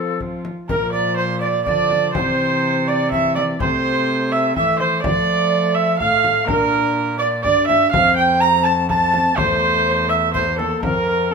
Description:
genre	classical, renaissance-style consort dance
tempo	124 BPM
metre	3/4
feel	straight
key	unclear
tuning	A4 = 440 Hz
part	breathy tenor recorder	melody	0.0-11.3 s	A4 to Bb5	-22 LUFS	left 6 dB	none
part	warm viola	second line	0.0-11.3 s	F4 to Bb5	-18 LUFS	right 6 dB	none
part	dark trombone	accompaniment	0.0-11.3 s	E3 to D4	-26 LUFS	left 2 dB	none
part	warm cello	bass	0.0-11.3 s	E2 to F3	-24 LUFS	equal	none
part	frame drum	percussion	0.2-11.1 s	none	-27 LUFS	left 4 dB	none
room	moderate stone room reverb, RT60 1.0 s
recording	minimal, uncompressed stereo recording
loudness	-15 LUFS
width	side -5 dB against mid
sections	0.7-11.3 A section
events	none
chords	0.0 F; 0.7 Bb; 2.1 C; 3.6 Am/C; 5.0 F; 6.5 Bb; 7.9 F; 9.4 Am/E; 10.8 F5

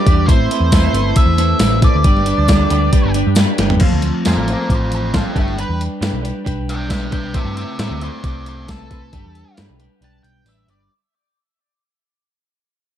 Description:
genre	indie rock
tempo	135 BPM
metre	4/4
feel	straight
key	unclear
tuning	A4 = 440 Hz
part	octave-fuzz lead guitar	melody	0.0-10.9 s	E4 to A5	-24 LUFS	equal	distortion, plate reverb, tape echo
part	clear tenor saxophone	second line	0.0-3.5 s	D4 to G4	-25 LUFS	right 11 dB	plate reverb
part	twelve-string electric guitar	riff	0.0-10.9 s	F3 to C5	-21 LUFS	equal	double-tracked left and right
part	hollow-body short-scale picked electric bass	bass	0.1-10.9 s	F1 to A2	-19 LUFS	equal	none
part	clean 12-bit digital drum machine	drums	0.1-10.8 s	crash cymbal, hi-hat, kick drum, snare drum, tambourine, toms	-16 LUFS	equal	overdrive
part	tambourine	percussion	0.7-3.5 s	none	-36 LUFS	left 16 dB	none
room	little or no reverb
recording	dark, warm production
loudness	-13 LUFS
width	side -10 dB against mid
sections	0.0-3.8 A section; 3.8-10.9 B section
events	drum fill 3.6; fade-out 3.8-10.9; lead electric guitar solo 3.8-10.9; break 10.0-10.9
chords	0.3 Amadd9; 2.0 G; 3.8 F; 5.4 G; 7.3 Amadd9; 9.1 G

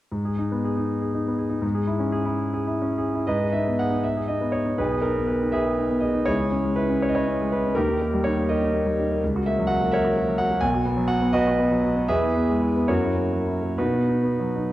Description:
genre	classical, romantic character piece for solo piano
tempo	62-86 BPM (dotted quarters)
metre	6/8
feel	rubato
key	G# minor, B major from 9.2 s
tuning	A4 = 435 Hz
part	clear concert grand piano	solo	0.1-14.7 s	B1 to G#5	-21 LUFS	equal	none
room	moderate concert hall reverb, RT60 1.7 s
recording	dark, warm production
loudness	-21 LUFS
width	side -15 dB against mid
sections	0.1-3.3 A section; 3.3-14.7 B section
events	none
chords	0.1 G#m; 1.6 C#m/G#; 3.3 G#m; 4.8 G#m/B; 6.3 C#m; 7.8 D#; 9.2 F#7/C#; 10.6 B; 12.1 E; 12.9 F#7; 13.8 B

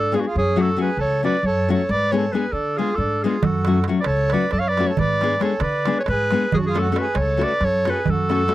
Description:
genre	balkan folk, Balkan wedding band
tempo	272 BPM (eighths)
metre	7/8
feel	straight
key	F# harmonic minor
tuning	A4 = 439 Hz
part	clear clarinet	melody	0.0-8.5 s	F#4 to E#5	-22 LUFS	equal	none
part	accordion	second line	0.0-8.5 s	C#4 to C#5	-28 LUFS	right 5 dB	none
part	upright bass	bass	0.0-8.4 s	C#2 to D3	-24 LUFS	equal	none
part	nylon-string guitar	accompaniment	0.1-8.5 s	F#3 to A4	-22 LUFS	left 5 dB	none
part	darbuka	percussion	3.4-8.5 s	none	-26 LUFS	right 6 dB	none
room	light reverb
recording	dry, close 1970s-style studio recording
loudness	-18 LUFS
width	side -15 dB against mid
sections	0.0-8.5 A section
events	none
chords	0.3 F#m; 1.9 G#dim; 3.4 F#m; 5.0 G#dim; 6.5 F#m

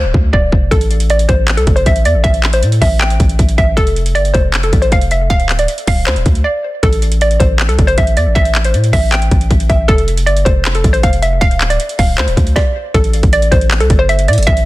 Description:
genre	hip hop, trap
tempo	157 BPM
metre	4/4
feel	half-time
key	A minor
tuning	A4 = 440 Hz
part	hollow square pluck	melody	0.0-14.7 s	A4 to G5	-16 LUFS	equal	chorus, ping-pong delay
part	long sustained 808-style bass	bass	0.0-14.7 s	D1 to A2	-14 LUFS	equal	none
part	trap drum kit	drums	0.1-14.7 s	handclaps, hi-hat, kick drum, snare drum	-14 LUFS	equal	vintage 12-bit sampler grit
room	digital ambience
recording	dense, heavily limited modern master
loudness	-10 LUFS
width	side -18 dB against mid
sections	0.0-12.9 A section; 12.9-14.7 B section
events	break 0.0-0.7, 6.4-6.8; stop 12.6-12.9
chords	0.0 Dm7; 0.7 Am; 3.8 F; 5.3 Dm7; 6.8 Am; 9.9 F; 11.4 Dm7; 12.9 Am7

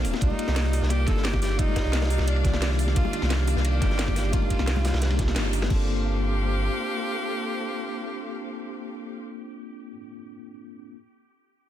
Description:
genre	liquid drum and bass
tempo	175 BPM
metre	4/4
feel	straight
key	G minor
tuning	A4 = 438 Hz
part	warm tenor saxophone	melody	0.0-9.2 s	D4 to A4	-34 LUFS	right 1 dB	dub echo
part	mellow tine electric piano	accompaniment	0.0-11.0 s	Eb3 to D5	-32 LUFS	left 1 dB	medium stereo tremolo
part	muted studio string section	sustained chords	0.0-9.2 s	Bb3 to F5	-35 LUFS	left 2 dB	none
part	warm sub bass	bass	0.0-6.7 s	D1 to C2	-25 LUFS	equal	none
part	crunchy breakbeat drum kit	drums	0.0-5.7 s	ride cymbal, snare drum	-36 LUFS	equal	high-pass filter on cymbals, studio reverb, high-pass filter on snare, high-pass filter on room
part	garage drum kit	drums	0.0-5.8 s	crash cymbal, hi-hat, snare drum	-32 LUFS	equal	studio reverb
part	bongos and congas	percussion	0.1-5.7 s	none	-38 LUFS	left 6 dB	none
part	electronic kick drum	drums	0.2-5.8 s	none	-25 LUFS	equal	studio reverb
room	little or no reverb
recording	dense, heavily limited modern master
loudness	-22 LUFS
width	side -12 dB against mid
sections	0.0-5.7 A section; 5.7-8.4 B section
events	drop 0.0-5.7; band accent 5.4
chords	0.2 Cm11; 5.7 Gm11

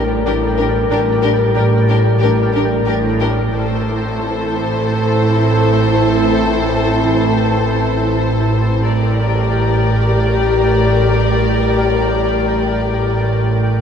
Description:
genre	cinematic, suspense film score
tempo	free time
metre	none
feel	none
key	unclear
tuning	A4 = 440 Hz
part	clear studio violin section	second line	0.0-13.8 s	G4 to Bb4	-24 LUFS	left 4 dB	none
part	dark French horn section	sustained chords	0.0-13.8 s	E3 to Bb4	-22 LUFS	left 4 dB	none
part	pulsing gated texture	sustained chords	0.0-13.8 s	A4 to A5	-25 LUFS	left 1 dB	chorus, built-in reverb
part	warm studio cello section	bass	0.0-13.8 s	A2	-20 LUFS	right 2 dB	none
part	warm studio double bass section	bass	0.0-13.8 s	A1	-20 LUFS	right 2 dB	none
part	analog drone	drone	0.0-13.8 s	A1	-21 LUFS	equal	chorus
part	rich studio violin section	melody	0.3-13.8 s	Bb4 to D5	-24 LUFS	left 4 dB	none
part	dark studio viola section	accompaniment	0.3-13.8 s	D4 to G4	-21 LUFS	equal	none
room	wet cathedral reverb, RT60 4.4 s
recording	dark, warm production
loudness	-13 LUFS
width	side -7 dB against mid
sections	0.0-13.8 A section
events	none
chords	0.0 Gmadd9/A; 3.5 Am; 8.8 Gmadd9/A

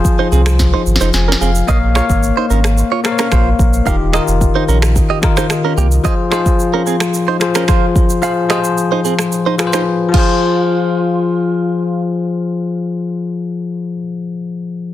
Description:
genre	afrobeats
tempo	110 BPM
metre	4/4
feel	straight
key	F minor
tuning	A4 = 440 Hz
part	bell-like tine electric piano	accompaniment	0.0-14.9 s	Eb3 to Ab5	-16 LUFS	left 4 dB	none
part	warm sub bass	bass	0.0-6.0 s	Eb1 to C2	-14 LUFS	equal	none
part	afro-pop drum kit	drums	0.0-10.3 s	crash cymbal, finger snaps, kick drum, rim click, shaker, snare drum	-16 LUFS	equal	soft clipping on snare
part	direct-recorded clean electric guitar	riff	0.2-12.0 s	Bb3 to F5	-20 LUFS	right 8 dB	tape echo
room	digital ambience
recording	dense, heavily limited modern master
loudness	-12 LUFS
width	side -13 dB against mid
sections	0.0-1.7 A section; 1.7-10.4 B section; 10.4-14.8 C section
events	drum fill 0.6-1.7; tine electric piano fill 0.9-1.7; silent gap 9.9-10.4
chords	0.0 Fm; 1.7 Bbm; 3.9 Ebadd9; 6.0 Fm

